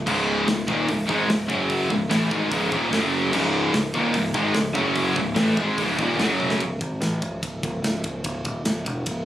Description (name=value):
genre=heavy metal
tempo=147 BPM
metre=4/4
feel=straight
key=C# minor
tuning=A4 = 440 Hz
part: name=scooped high-gain guitar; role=riff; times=0.0-6.6 s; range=C#2 to A3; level=-24 LUFS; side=left 1 dB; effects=distortion
part: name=growling picked electric bass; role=bass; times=0.0-9.2 s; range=C#1 to A1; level=-28 LUFS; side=equal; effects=overdrive
part: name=raw garage guitar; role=riff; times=0.1-6.6 s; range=C#2 to A3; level=-24 LUFS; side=equal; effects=overdrive
part: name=tight metal drum kit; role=drums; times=0.1-9.2 s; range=crash cymbal, hi-hat, kick drum, ride cymbal, snare drum, toms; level=-29 LUFS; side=equal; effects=none
room=light reverb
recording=recorded on a phone in the room, studio ambience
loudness=-20 LUFS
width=side -12 dB against mid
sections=0.0-6.6 A section; 6.6-9.2 B section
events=drum fill 6.4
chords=0.0 C#5; 1.5 F#5; 1.9 C#m; 2.9 F#5; 3.3 C#5; 4.8 F#5; 5.2 C#m; 6.2 F#5; 6.6 N.C.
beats=| 0.07 0.47 0.88 1.29 | 1.70 2.10 2.51 2.92 | 3.33 3.73 4.14 4.55 | 4.96 5.37 5.78 6.19 | 6.60 7.01 7.42 7.83 | 8.24 8.65 9.06